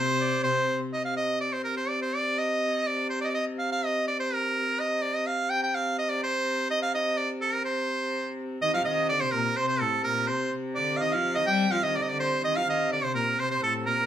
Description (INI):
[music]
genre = medieval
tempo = 125 BPM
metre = 2/4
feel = straight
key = C dorian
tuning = A4 = 440 Hz
[part]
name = edgy shawm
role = melody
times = 0.0-14.1 s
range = A4 to G5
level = -26 LUFS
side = right 2 dB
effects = none
[part]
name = clear trumpet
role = second line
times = 0.0-0.8, 8.6-14.1 s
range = A4 to G5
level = -32 LUFS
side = right 2 dB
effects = none
[part]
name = rich viola da gamba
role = second line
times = 0.0-0.8, 8.6-14.1 s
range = A2 to G3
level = -32 LUFS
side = left 4 dB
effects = none
[part]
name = clear hurdy-gurdy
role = drone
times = 0.0-14.1 s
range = C3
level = -33 LUFS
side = left 1 dB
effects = none
[sound]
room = wet studio reverb, RT60 0.6 s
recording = band playing live in one room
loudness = -25 LUFS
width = side -10 dB against mid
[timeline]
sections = 0.9-8.6 A section; 8.6-14.1 A section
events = none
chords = none